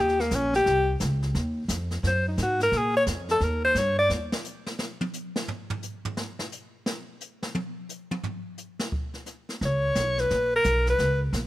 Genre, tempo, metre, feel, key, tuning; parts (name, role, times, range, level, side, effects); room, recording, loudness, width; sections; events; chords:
jazz, small-group swing and bop; 174 BPM; 4/4; swing 64% on 8ths; A4 = 440 Hz
clear alto saxophone; melody; 0.0-4.1, 9.7-11.2 s; Bb3 to D5; -23 LUFS; left 1 dB
upright bass; bass; 0.0-4.3, 9.6-11.5 s; Bb1 to Bb2; -27 LUFS; equal
jazz brush drum kit; drums; 0.1-11.5 s; brushed snare drum, hi-hat, kick drum, snare drum, toms; -33 LUFS; equal
light reverb; -24 LUFS; side -16 dB against mid
0.0-4.1 A section; 4.1-11.5 A section
alto saxophone solo 0.0-11.5; drum solo 4.1-9.6
0.0 Eb7; 1.3 Ab5; 2.7 Bb5; 3.4 Eb; 4.1 N.C.; 9.6 Bbm